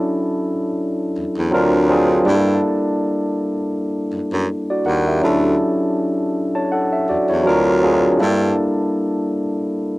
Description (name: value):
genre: R&B, neo-soul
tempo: 81 BPM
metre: 4/4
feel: swing 55% on 16ths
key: D major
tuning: A4 = 442 Hz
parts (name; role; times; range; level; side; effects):
- barky tine electric piano; accompaniment; 0.0-10.0 s; F#3 to A5; -17 LUFS; equal; overdrive, cassette tape
- bright baritone saxophone; bass; 1.2-8.5 s; D2 to G2; -21 LUFS; equal; none
room: moderate spring reverb, RT60 1.2 s, small room ambience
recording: home recording on cassette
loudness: -16 LUFS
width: side -20 dB against mid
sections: 0.0-10.0 A section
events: none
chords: 0.0 Dmaj9; 1.5 D7alt; 2.3 Gm6; 5.2 Dmaj9; 7.5 D7alt; 8.2 Gm6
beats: 0.05 0.79 1.53 | 2.27 3.01 3.75 4.49 | 5.23 5.97 6.71 7.45 | 8.19 8.93 9.68